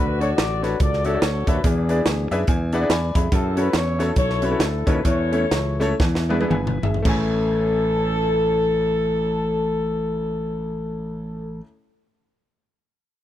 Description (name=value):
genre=uptempo gospel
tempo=107-143 BPM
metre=4/4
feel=swing 60% on 8ths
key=A major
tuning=A4 = 441 Hz
part: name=mellow horn section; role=melody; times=0.0-11.6 s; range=B3 to E5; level=-24 LUFS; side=left 2 dB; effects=none
part: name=clear baby grand piano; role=accompaniment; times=0.0-11.6 s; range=A1 to B5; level=-26 LUFS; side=left 2 dB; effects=none
part: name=fingered electric bass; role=bass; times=0.0-11.6 s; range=G1 to F#2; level=-24 LUFS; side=equal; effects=none
part: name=crisp fusion drum kit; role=drums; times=0.2-7.2 s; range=crash cymbal, hi-hat, kick drum, snare drum, toms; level=-22 LUFS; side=right 1 dB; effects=none
room=small room ambience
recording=none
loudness=-19 LUFS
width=side -12 dB against mid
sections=0.0-7.1 A section; 7.1-11.5 B section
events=grand piano fill 2.1-3.3; slowing down 3.3-7.1; drum fill 6.0-7.1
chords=0.0 Dmaj7; 1.6 E7; 3.3 F#m7; 5.0 A/E; 6.0 E7; 7.1 Amaj7